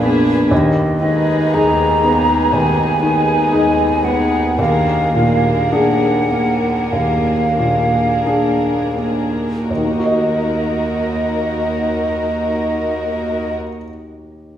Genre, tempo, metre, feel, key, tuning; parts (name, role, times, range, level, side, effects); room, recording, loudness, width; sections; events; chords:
classical, romantic movement for piano and orchestra; 40-64 BPM; 4/4; rubato; Eb minor; A4 = 440 Hz
warm concert grand piano; melody; 0.0-14.6 s; Bb1 to Eb5; -18 LUFS; left 1 dB
warm chamber violin section; second line; 0.0-13.5 s; Gb4 to Cb5; -25 LUFS; left 2 dB
warm chamber viola section; accompaniment; 0.0-13.5 s; Ab3 to Eb4; -22 LUFS; right 1 dB
warm chamber cello section; bass; 0.0-13.5 s; Eb2 to Bb2; -27 LUFS; right 2 dB
hollow concert flute; second line; 0.5-13.5 s; Eb5 to Bb5; -19 LUFS; right 1 dB
wet recital hall reverb, RT60 1.6 s; recorded in a church or concert hall; -14 LUFS; side -10 dB against mid
0.0-9.7 A section; 9.7-14.6 B section
slowing down 0.0-9.7
0.0 Bb7b9; 0.5 Abm/Eb; 4.6 Bb7/Eb; 9.7 Ebm